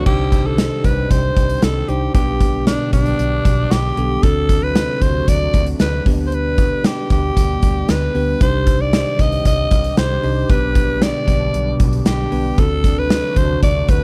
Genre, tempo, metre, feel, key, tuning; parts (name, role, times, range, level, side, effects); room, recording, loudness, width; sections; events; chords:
1980s-style pop; 115 BPM; 4/4; straight; G major; A4 = 438 Hz
raspy alto saxophone; melody; 0.0-14.0 s; D4 to Eb5; -24 LUFS; equal
bell-like tine electric piano; accompaniment; 0.0-14.0 s; B2 to Eb5; -26 LUFS; equal
crunchy overdriven guitar; accompaniment; 0.0-0.6 s; D3 to D4; -33 LUFS; equal
phased analog pad; sustained chords; 0.0-14.0 s; B2 to G4; -29 LUFS; equal; phaser, chorus
vintage muted fingered electric bass; bass; 0.1-14.0 s; B1 to D2; -24 LUFS; equal
gated 80s drum kit; drums; 0.1-14.0 s; crash cymbal, hi-hat, kick drum, snare drum; -19 LUFS; equal
little or no reverb; -17 LUFS; mono
0.1-14.0 A section
0.1 Cmadd9; 2.1 G/B; 4.2 D7; 6.1 G/D; 8.4 Cmadd9; 10.5 G/B; 12.6 D7